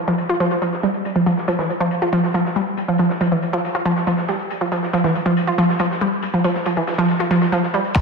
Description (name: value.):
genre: driving peak-time techno.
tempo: 139 BPM.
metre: 4/4.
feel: straight.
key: unclear.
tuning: A4 = 440 Hz.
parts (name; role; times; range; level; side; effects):
analog pluck; riff; 0.1-7.8 s; E3 to F4; -17 LUFS; right 1 dB; chorus, sidechain pumping, tape echo.
oversized low-tuned drum kit; drums; 0.1-8.0 s; hi-hat, snare drum; -31 LUFS; left 2 dB; sidechain pumping on hats, high-pass filter on hats, low-pass filter on hats, high-pass filter on snare, low-pass filter on snare, high-pass filter on room, low-pass filter on room.
electronic kick drum; drums; 8.0 s; none; -14 LUFS; equal; none.
techno drum kit; drums; 8.0 s; crash cymbal, handclaps, hi-hat, tambourine; -20 LUFS; left 2 dB; low-pass filter on snare, low-pass filter on hats, low-pass filter on cymbals, low-pass filter on perc, low-pass filter on room.
room: wet lush hall reverb, RT60 1.7 s, digital ambience.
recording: dreamy mix soaked in reverb.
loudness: -17 LUFS.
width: side -4 dB against mid.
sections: 0.0-8.0 A section.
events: filter sweep on synth arpeggio sound 0.0-8.0.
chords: none.